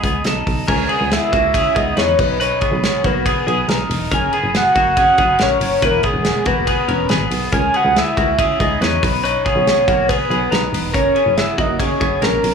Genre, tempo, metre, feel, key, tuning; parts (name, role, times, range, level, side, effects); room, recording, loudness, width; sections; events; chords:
jangly indie pop; 140 BPM; 4/4; straight; C# dorian; A4 = 440 Hz
soft octave-layered synth lead; melody; 0.0-12.5 s; G#4 to G#5; -17 LUFS; equal; chorus, plate reverb, slapback echo, ping-pong delay
twelve-string electric guitar; arpeggios; 0.0-12.5 s; A#3 to A#5; -20 LUFS; left 1 dB; plate reverb, slapback echo
solid FM bass; bass; 0.0-12.5 s; E1 to E2; -22 LUFS; right 1 dB
loose indie drum kit; drums; 0.0-12.5 s; crash cymbal, hi-hat, kick drum, ride cymbal, snare drum; -21 LUFS; equal
moderate club reverb, RT60 0.6 s; live gig heard through the venue's PA, club reverb; -14 LUFS; side -6 dB against mid
0.7-12.5 A section
0.0 B7; 0.7 C#m; 2.2 B; 4.1 F#; 5.8 E; 7.5 C#m; 9.0 B; 10.9 F#